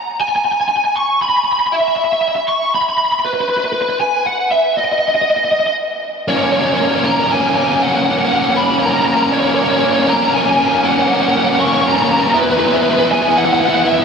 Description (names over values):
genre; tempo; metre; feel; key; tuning
rock; 118 BPM; 3/4; straight; unclear; A4 = 440 Hz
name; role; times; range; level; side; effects
overdriven electric guitar; melody; 0.2-14.0 s; B4 to C#6; -14 LUFS; equal; ensemble chorus, diffuse ambient delay
biting overdriven guitar; riff; 6.3-14.0 s; A#3 to E4; -14 LUFS; equal; none
room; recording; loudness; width
wet huge ambient reverb, RT60 6.2 s; dreamy mix soaked in reverb; -12 LUFS; side -6 dB against mid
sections
0.0-6.3 A section; 6.3-14.0 B section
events
build-up 6.3-14.0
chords
0.0 N.C.; 6.3 F#; 12.3 E5